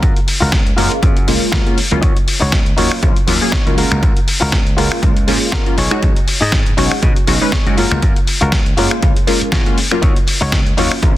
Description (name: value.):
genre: filtered disco house.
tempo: 120 BPM.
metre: 4/4.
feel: swing 55% on 16ths.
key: F# major.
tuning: A4 = 439 Hz.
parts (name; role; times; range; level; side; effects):
direct-recorded clean electric guitar; riff; 0.0-11.1 s; D#4 to D#5; -22 LUFS; left 2 dB; sidechain pumping, low-pass filter.
slap bass; bass; 0.0-11.1 s; A#1 to B2; -19 LUFS; equal; tube saturation, sidechain pumping, low-pass filter.
dusty soul sampler-style drum kit; drums; 0.0-11.1 s; finger snaps, hi-hat, snare drum; -19 LUFS; left 1 dB; sidechain pumping on hats.
electronic kick drum; drums; 0.0-11.1 s; none; -15 LUFS; equal; none.
maracas; percussion; 0.0-11.1 s; none; barely audible; none; none.
funky polysynth comp; accompaniment; 0.8-11.2 s; F#3 to B4; -18 LUFS; equal; chorus, phaser, sidechain pumping, low-pass filter.
room: digital ambience.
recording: dense, heavily limited modern master.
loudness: -12 LUFS.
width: side -14 dB against mid.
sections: 0.0-11.2 A section.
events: filter sweep 0.0-11.2.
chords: 0.0 F#maj7; 2.0 D#m7; 3.8 F#maj7/C#; 5.8 B69; 7.8 F#maj7; 10.0 D#m7.